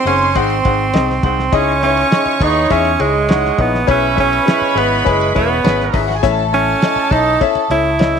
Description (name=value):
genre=uptempo 1960s-style soul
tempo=102 BPM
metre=4/4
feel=straight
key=C# minor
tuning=A4 = 439 Hz
part: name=edgy alto saxophone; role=melody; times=0.0-8.2 s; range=G#3 to E4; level=-16 LUFS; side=right 3 dB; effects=none
part: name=glockenspiel with rubber mallets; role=second line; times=0.0-8.2 s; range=G#5 to E6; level=-23 LUFS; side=right 13 dB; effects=none
part: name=warm studio string section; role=second line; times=0.0-8.2 s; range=D#4 to C#6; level=-21 LUFS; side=left 1 dB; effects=none
part: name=clear concert grand piano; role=accompaniment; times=0.0-8.2 s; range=A2 to F#5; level=-19 LUFS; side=left 14 dB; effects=none
part: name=vintage muted fingered electric bass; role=bass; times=0.1-8.2 s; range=E1 to E2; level=-21 LUFS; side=equal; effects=none
part: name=cloth-damped thuddy drum kit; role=drums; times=0.1-8.2 s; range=hi-hat, kick drum, ride cymbal, snare drum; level=-19 LUFS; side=equal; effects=none
part: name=clear horn section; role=second line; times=1.5-6.1 s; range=E3 to F#5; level=-23 LUFS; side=right 14 dB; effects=none
room=light reverb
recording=1960s-style stereo with parts hard left and right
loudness=-12 LUFS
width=side -7 dB against mid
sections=0.0-8.2 A section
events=none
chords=0.0 G#; 1.5 C#madd9; 3.9 E6; 6.2 A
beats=0.36 0.94 | 1.53 2.12 2.71 3.29 | 3.88 4.47 5.06 5.64 | 6.23 6.82 7.41 7.99